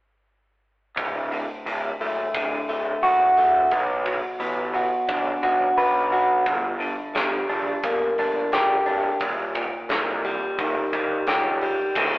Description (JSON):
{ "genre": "quiet-loud alternative rock", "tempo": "87 BPM", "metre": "4/4", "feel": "straight", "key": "unclear", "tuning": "A4 = 439 Hz", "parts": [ { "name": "electric guitar through a small old amp", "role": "arpeggios", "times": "1.0-12.2 s", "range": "D2 to B4", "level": "-22 LUFS", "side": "equal", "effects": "spring reverb" }, { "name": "fuzz picked electric bass", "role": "bass", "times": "1.0-12.2 s", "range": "D1 to Eb2", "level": "-28 LUFS", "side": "equal", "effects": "overdrive" }, { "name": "big rock drum kit", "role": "drums", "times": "1.0-12.1 s", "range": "crash cymbal, hi-hat, kick drum, snare drum", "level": "-29 LUFS", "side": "equal", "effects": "none" } ], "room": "moderate stone room reverb, RT60 1.1 s", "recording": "rough rehearsal-room recording, warm saturation, telephone sound", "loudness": "-20 LUFS", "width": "side -20 dB against mid", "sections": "1.0-12.0 A section", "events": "none", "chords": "1.0 D; 3.7 Bm; 6.5 Gm; 9.2 Eb" }